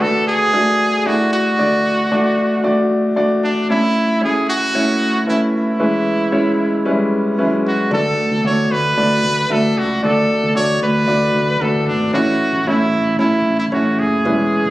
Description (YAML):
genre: pop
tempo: 114 BPM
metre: 4/4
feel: straight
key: A major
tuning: A4 = 441 Hz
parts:
  - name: brilliant trumpet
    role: melody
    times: 0.0-14.7 s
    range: D4 to C#5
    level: -18 LUFS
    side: right 1 dB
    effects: none
  - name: warm grand piano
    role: accompaniment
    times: 0.0-14.7 s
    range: A2 to E5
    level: -16 LUFS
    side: equal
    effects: none
  - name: modern bright fingered electric bass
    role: bass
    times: 7.9-14.7 s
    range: E1 to D2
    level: -23 LUFS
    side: equal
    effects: none
room: moderate plate reverb, RT60 3.3 s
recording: recorded on a phone in the room, club reverb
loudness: -14 LUFS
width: side -16 dB against mid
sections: 0.0-14.7 A section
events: none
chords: 0.0 D; 3.7 A; 5.8 E6; 7.9 D; 12.1 A